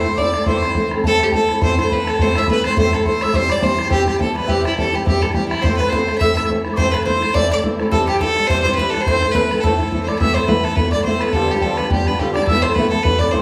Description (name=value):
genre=celtic folk, Celtic reel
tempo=210 BPM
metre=4/4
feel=swing 56% on 8ths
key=A minor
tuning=A4 = 440 Hz
part: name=clear fiddle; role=melody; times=0.0-13.4 s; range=E4 to E5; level=-22 LUFS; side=equal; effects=tape echo
part: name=mellow hollow tin whistle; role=second line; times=0.0-13.4 s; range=E5 to E6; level=-28 LUFS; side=equal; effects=none
part: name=fingerpicked twelve-string acoustic guitar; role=accompaniment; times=0.0-13.4 s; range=G2 to E4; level=-23 LUFS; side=equal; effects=none
part: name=bodhran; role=percussion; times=0.2-13.4 s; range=none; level=-23 LUFS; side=equal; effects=none
part: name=bowl-back mandolin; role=second line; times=5.6-10.0 s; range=G4 to E5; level=-29 LUFS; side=equal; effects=none
room=wet studio reverb, RT60 0.6 s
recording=studio reverb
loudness=-17 LUFS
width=mono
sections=0.0-1.0 A section; 1.0-10.2 A section; 10.2-13.4 B section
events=none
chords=0.0 Am; 3.3 C; 5.6 Am; 7.9 C; 9.1 Am; 10.2 Asus2; 11.3 G7; 12.5 Asus2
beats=0.18 0.47 0.76 | 1.04 1.33 1.62 1.91 | 2.19 2.48 2.77 3.05 | 3.34 3.63 3.91 4.20 | 4.49 4.77 5.06 5.35 | 5.63 5.92 6.21 6.49 | 6.78 7.06 7.35 7.63 | 7.92 8.21 8.49 8.78 | 9.06 9.35 9.63 9.92 | 10.20 10.48 10.77 11.05 | 11.34 11.62 11.91 12.19 | 12.48 12.76 13.04 13.33